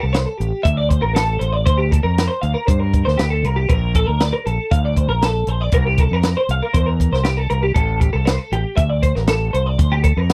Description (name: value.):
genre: math rock and midwest emo.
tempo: 118 BPM.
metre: 4/4.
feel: straight.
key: unclear.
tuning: A4 = 441 Hz.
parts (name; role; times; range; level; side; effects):
twelve-string electric guitar; arpeggios; 0.0-10.3 s; G4 to F5; -24 LUFS; equal; ensemble chorus.
growling fingered electric bass; bass; 0.0-10.3 s; A1 to G2; -21 LUFS; equal; overdrive.
compact cocktail drum kit; drums; 0.1-10.3 s; hi-hat, kick drum, snare drum; -21 LUFS; equal; none.
room: little or no reverb.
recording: dry, close 1970s-style studio recording.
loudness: -18 LUFS.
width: mono.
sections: 0.0-10.3 A section.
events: none.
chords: 0.0 Am7; 1.7 Dm7; 3.7 Bbmaj7; 5.7 C7sus4; 7.8 Am7; 9.8 Dm7.